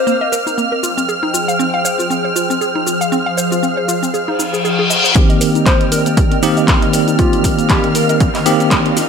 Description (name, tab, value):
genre	deep house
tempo	118 BPM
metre	4/4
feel	swing 56% on 16ths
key	C minor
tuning	A4 = 440 Hz
part	soft struck synth lead	melody	0.0-0.2, 5.7-8.2 s	F4 to C5	-20 LUFS	left 4 dB	chorus, digital delay
part	hollow soft pad	sustained chords	0.0-9.1 s	F3 to D6	-21 LUFS	left 2 dB	ensemble chorus, sidechain pumping
part	warm studio violin section	texture	0.0-9.1 s	F6	-22 LUFS	right 2 dB	sidechain pumping
part	mallet-like synth pluck	arpeggios	0.1-9.1 s	Bb3 to F5	-21 LUFS	right 2 dB	chorus, sidechain pumping, digital delay
part	punchy analog drum machine	drums	0.1-9.1 s	handclaps, hi-hat, shaker	-21 LUFS	left 1 dB	high-pass filter on perc, high-pass filter on hats, high-pass filter on snare
part	reverse cymbal and riser	sound effects	4.4-9.1 s	none	-20 LUFS	left 3 dB	none
part	barky tine electric piano	stabs	5.2-9.0 s	Eb3 to G4	-15 LUFS	right 1 dB	fast stereo tremolo, sidechain pumping, ping-pong delay
part	electronic kick drum	drums	5.2-8.8 s	none	-14 LUFS	equal	none
room	moderate digital room reverb, RT60 1.1 s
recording	high-pass filter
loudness	-12 LUFS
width	side -6 dB against mid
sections	0.0-5.2 A section; 5.2-9.1 B section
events	reverse cymbal 4.4-5.2; build-up 5.2-9.1; filter sweep on synth arpeggio sound 5.2-9.1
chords	0.0 Cm7; 0.8 Fm7; 5.2 Cm7